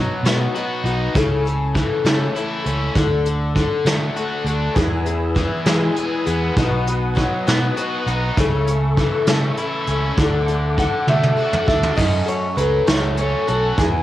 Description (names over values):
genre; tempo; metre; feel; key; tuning
folk rock and heartland rock; 66 BPM (dotted quarters); 6/8; straight; unclear; A4 = 440 Hz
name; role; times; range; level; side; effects
picked twelve-string acoustic guitar; accompaniment; 0.0-14.0 s; F#2 to A4; -24 LUFS; left 5 dB; cassette tape
crunchy overdriven guitar; riff; 0.0-14.0 s; E2 to G#4; -24 LUFS; equal; cassette tape
fingered electric bass; bass; 0.0-14.0 s; B1 to E3; -21 LUFS; right 1 dB; none
soft brush drum kit; drums; 0.3-13.9 s; crash cymbal, hi-hat, kick drum, snare drum, toms; -21 LUFS; right 1 dB; cassette tape
tonewheel organ; sustained chords; 4.7-12.0 s; A4 to E6; -30 LUFS; right 1 dB; slow rotary speaker, overdrive, chorus vibrato, cassette tape
electric guitar through a small old amp; melody; 10.8-14.0 s; G#4 to F#5; -21 LUFS; right 2 dB; cassette tape
room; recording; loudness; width
light reverb; home recording on cassette; -17 LUFS; side -14 dB against mid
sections
0.0-12.0 A section; 12.0-14.0 B section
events
drum fill 11.1-12.0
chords
0.0 B; 1.2 A/C#; 3.0 D; 4.8 E; 6.6 B; 8.4 A/C#; 10.2 D; 12.0 F#m